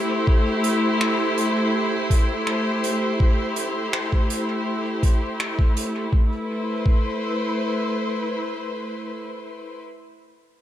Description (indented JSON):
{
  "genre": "ambient dub",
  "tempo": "82 BPM",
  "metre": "4/4",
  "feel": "straight",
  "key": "A minor",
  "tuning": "A4 = 440 Hz",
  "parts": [
    { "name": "warm chamber string section", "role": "sustained chords", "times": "0.0-9.8 s", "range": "A3 to C5", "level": "-23 LUFS", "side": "equal", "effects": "none" },
    { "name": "electronic kick drum", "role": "drums", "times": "0.3-7.1 s", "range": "none", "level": "-18 LUFS", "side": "equal", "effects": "none" },
    { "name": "soft-mallet drum kit", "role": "drums", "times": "0.6-5.9 s", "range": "finger snaps, hi-hat", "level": "-29 LUFS", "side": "right 1 dB", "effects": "dub echo" }
  ],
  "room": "moderate concert hall reverb, RT60 2.2 s",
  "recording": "none",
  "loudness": "-20 LUFS",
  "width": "side -12 dB against mid",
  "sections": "0.0-6.1 A section; 6.1-9.1 B section",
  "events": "none",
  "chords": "0.0 Am7; 6.1 Am",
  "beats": "| 0.27 1.00 1.74 2.47 | 3.20 3.93 4.66 5.39 | 6.13 6.86 7.59 8.32"
}